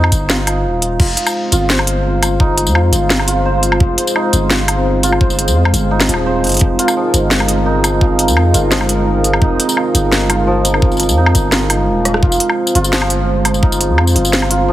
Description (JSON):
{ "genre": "half-time drum and bass", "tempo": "171 BPM", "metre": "4/4", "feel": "half-time", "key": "F minor", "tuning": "A4 = 440 Hz", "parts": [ { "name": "santur", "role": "arpeggios", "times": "0.0-14.7 s", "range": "F3 to C5", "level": "-17 LUFS", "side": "right 1 dB", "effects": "digital delay" }, { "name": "long sustained 808-style bass", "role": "bass", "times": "0.0-14.7 s", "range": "Eb1 to F2", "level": "-16 LUFS", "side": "equal", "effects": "none" }, { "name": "drum and bass drum kit", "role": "drums", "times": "0.0-14.6 s", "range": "crash cymbal, hi-hat, rim click, snare drum, tambourine, woodblock", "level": "-17 LUFS", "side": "equal", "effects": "none" }, { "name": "electronic kick drum", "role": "drums", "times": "0.1-13.7 s", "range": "none", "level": "-14 LUFS", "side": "equal", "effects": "none" }, { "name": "dark analog pad", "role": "sustained chords", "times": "1.0-14.7 s", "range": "Ab3 to C5", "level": "-19 LUFS", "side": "right 1 dB", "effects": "chorus, sidechain pumping" } ], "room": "light reverb, digital ambience", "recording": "heavily compressed radio sound", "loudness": "-11 LUFS", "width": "side -14 dB against mid", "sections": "0.0-12.2 A section; 12.2-14.7 A section", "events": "drop 0.0-12.2, 12.2-14.7; drum fill 12.1", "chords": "0.0 Fm" }